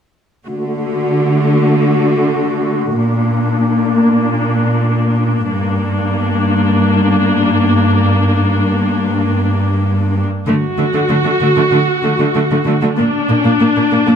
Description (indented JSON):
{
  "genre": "cinematic",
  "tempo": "96 BPM",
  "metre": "4/4",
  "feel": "straight",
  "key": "unclear",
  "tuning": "A4 = 440 Hz",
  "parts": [
    { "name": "rich studio viola section", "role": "accompaniment", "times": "0.5-14.2 s", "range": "A3 to F#4", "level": "-15 LUFS", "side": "left 1 dB", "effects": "low-pass filter" },
    { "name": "rich symphonic cello section", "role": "bass", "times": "0.5-14.1 s", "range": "G2 to D3", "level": "-15 LUFS", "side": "equal", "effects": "none" }
  ],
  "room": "light reverb",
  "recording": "none",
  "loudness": "-12 LUFS",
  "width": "side -8 dB against mid",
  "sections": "0.5-10.5 A section; 10.5-14.2 B section",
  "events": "filter sweep on viola section 0.5-10.5",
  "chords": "0.5 D; 3.0 Bb; 5.5 Gm; 10.5 D; 13.0 Bb"
}